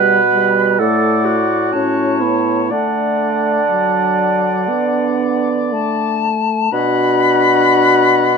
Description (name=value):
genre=classical, slow romantic movement for wind quintet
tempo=56-66 BPM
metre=4/4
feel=rubato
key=D major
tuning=A4 = 440 Hz
part: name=silver concert flute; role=melody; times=0.0-8.4 s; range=F#5 to B5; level=-19 LUFS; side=left 6 dB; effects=none
part: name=warm oboe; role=second line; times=0.0-8.4 s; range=C#5 to F#5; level=-21 LUFS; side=left 9 dB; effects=none
part: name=clear clarinet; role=accompaniment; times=0.0-8.4 s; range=D4 to B4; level=-18 LUFS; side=right 7 dB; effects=none
part: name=warm French horn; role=accompaniment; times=0.0-8.4 s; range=F#3 to D4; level=-20 LUFS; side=equal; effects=none
part: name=warm bassoon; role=bass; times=0.0-8.4 s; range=A2 to D3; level=-19 LUFS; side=right 3 dB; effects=none
room=light reverb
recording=minimal, uncompressed stereo recording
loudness=-13 LUFS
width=side -5 dB against mid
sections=0.0-6.7 A section; 6.7-8.4 B section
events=none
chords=0.0 G; 0.8 D/A; 1.7 A; 2.7 D; 6.7 Bm